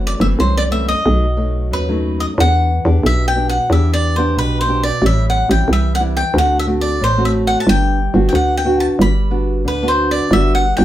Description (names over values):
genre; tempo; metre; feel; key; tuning
samba and choro; 91 BPM; 4/4; straight; G major; A4 = 439 Hz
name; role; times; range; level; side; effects
nylon-string guitar; accompaniment; 0.0-10.8 s; F#2 to G4; -19 LUFS; equal; none
hollow knocking FM bass; bass; 0.0-10.8 s; F#1 to E2; -16 LUFS; equal; none
cavaquinho; melody; 0.1-10.8 s; B4 to B5; -18 LUFS; equal; none
room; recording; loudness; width
wet studio reverb, RT60 0.5 s; heard from further back in the room; -13 LUFS; side -13 dB against mid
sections
0.0-10.8 A section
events
none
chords
0.0 F#m7b5; 1.1 B7; 2.4 Em7; 5.0 Am7; 6.3 D7; 7.7 Gmaj7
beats
0.39 1.05 1.71 | 2.37 3.04 3.70 4.36 | 5.02 5.68 6.34 7.01 | 7.67 8.33 8.99 9.65 | 10.31